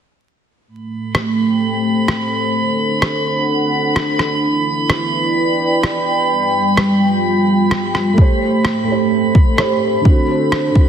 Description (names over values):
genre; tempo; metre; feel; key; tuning
future garage; 128 BPM; 4/4; swing 60% on 16ths; A minor; A4 = 444 Hz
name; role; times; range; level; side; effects
dark analog pad; sustained chords; 0.7-10.9 s; G3 to G5; -17 LUFS; equal; chorus, sidechain pumping
drifting glass-harmonics texture; texture; 1.1-10.9 s; B5; -21 LUFS; right 4 dB; chorus, built-in reverb
electronic rim click; drums; 1.1-10.6 s; none; -21 LUFS; equal; soft clipping on snare
felt-muted upright piano; accompaniment; 8.1-10.9 s; D3 to C5; -18 LUFS; right 1 dB; sidechain pumping, tape echo
electronic kick drum; drums; 8.2-10.9 s; none; -10 LUFS; equal; none
room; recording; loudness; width
moderate lush hall reverb, RT60 2.4 s; dense, heavily limited modern master, vinyl crackle; -13 LUFS; side -8 dB against mid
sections
0.7-10.9 A section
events
none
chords
0.7 Am7; 2.6 D7; 4.4 Em7; 6.3 G7; 8.2 Am7; 10.1 D7